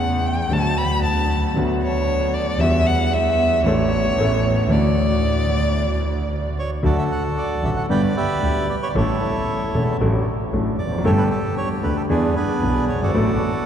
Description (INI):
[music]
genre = tango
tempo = 114 BPM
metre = 4/4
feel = rubato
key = D major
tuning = A4 = 440 Hz
[part]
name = warm violin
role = second line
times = 0.0-6.6 s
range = C#5 to B5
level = -22 LUFS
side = equal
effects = none
[part]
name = clear concert grand piano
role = accompaniment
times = 0.0-13.4 s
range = E1 to A4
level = -21 LUFS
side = left 1 dB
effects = none
[part]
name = clear double bass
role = bass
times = 0.0-13.4 s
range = E1 to E2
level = -23 LUFS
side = right 1 dB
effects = none
[part]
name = bandoneon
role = melody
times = 6.6-13.7 s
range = B3 to G5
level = -24 LUFS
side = right 2 dB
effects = none
[sound]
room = wet cathedral reverb, RT60 6.4 s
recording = recorded in a church or concert hall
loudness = -18 LUFS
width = side -9 dB against mid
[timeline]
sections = 0.0-6.8 A section; 6.8-13.7 B section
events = violin solo 0.0-6.8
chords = 0.0 A/E; 0.5 D; 1.6 Bm/D; 2.6 Emadd9; 3.7 Asus4; 4.2 Aadd9; 4.7 Dadd9; 6.8 D; 7.9 G; 9.0 A; 10.0 D/A; 11.0 Gsus2; 12.1 E7; 13.1 D/A